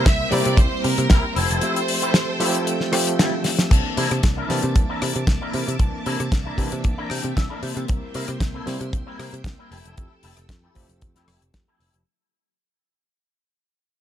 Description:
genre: nu-disco, nu disco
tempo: 115 BPM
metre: 4/4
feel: straight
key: C mixolydian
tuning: A4 = 439 Hz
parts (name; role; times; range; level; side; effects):
- rich studio violin section; melody; 0.0-3.2 s; Bb4 to E5; -26 LUFS; right 2 dB; ping-pong delay
- overdriven reed electric piano; accompaniment; 0.0-12.0 s; E3 to A5; -28 LUFS; right 1 dB; fast tremolo, sidechain pumping, ping-pong delay
- string machine, full ensemble; sustained chords; 0.0-12.0 s; Bb3 to E6; -32 LUFS; right 1 dB; ensemble chorus, vintage 12-bit sampler grit, sidechain pumping
- electric guitar with an envelope filter; riff; 0.0-12.0 s; C4 to G5; -30 LUFS; left 3 dB; ensemble chorus, low-pass filter, ping-pong delay
- picked electric bass; bass; 0.0-12.0 s; F1 to C3; -26 LUFS; equal; sidechain pumping
- damped 70s drum kit; drums; 0.1-12.0 s; crash cymbal, hi-hat, rim click, snare drum; -24 LUFS; left 2 dB; none
- kick drum; drums; 0.1-11.6 s; none; -18 LUFS; equal; none
room: small room reverb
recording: none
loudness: -19 LUFS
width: side -11 dB against mid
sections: 0.0-3.7 A section; 3.7-12.1 B section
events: drop 0.0-3.7; break 1.6-3.7; band accent 3.2; drum fill 3.5; fade-out 3.7-12.1; filter sweep on picked electric bass 3.7-12.1; clean electric guitar fill 6.8-7.9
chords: 0.0 C7; 1.4 Fmaj9; 3.7 C13; 7.9 C7; 9.7 Fmaj9

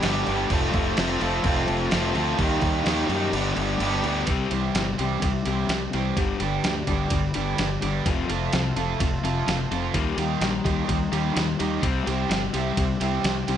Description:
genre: indie rock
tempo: 127 BPM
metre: 4/4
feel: straight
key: unclear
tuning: A4 = 439 Hz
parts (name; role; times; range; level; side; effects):
- warm analog pad; sustained chords; 0.0-13.6 s; F4 to D6; -35 LUFS; equal; chorus
- overdriven electric guitar; riff; 0.0-13.6 s; F2 to Eb4; -27 LUFS; left 7 dB; none
- overdriven electric guitar; riff; 0.0-13.6 s; G2 to A4; -28 LUFS; right 7 dB; wide subtle chorus, digital delay
- fuzz fingered electric bass; bass; 0.0-13.6 s; F1 to F#2; -29 LUFS; right 1 dB; overdrive
- dusty soul sampler-style drum kit; drums; 0.0-13.6 s; crash cymbal, kick drum, ride cymbal, snare drum; -28 LUFS; right 1 dB; none
room: moderate studio reverb, RT60 0.8 s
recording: nothing above 10.6 kHz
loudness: -22 LUFS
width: side -9 dB against mid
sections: 0.0-4.3 A section; 4.3-13.6 B section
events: kick and snare drop out 3.3-4.3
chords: 0.0 G; 0.5 Fmaj7; 2.4 Eb6; 3.3 G; 4.3 Cadd9; 6.2 G; 8.1 Fmaj7; 9.9 Eb6; 11.8 Cadd9

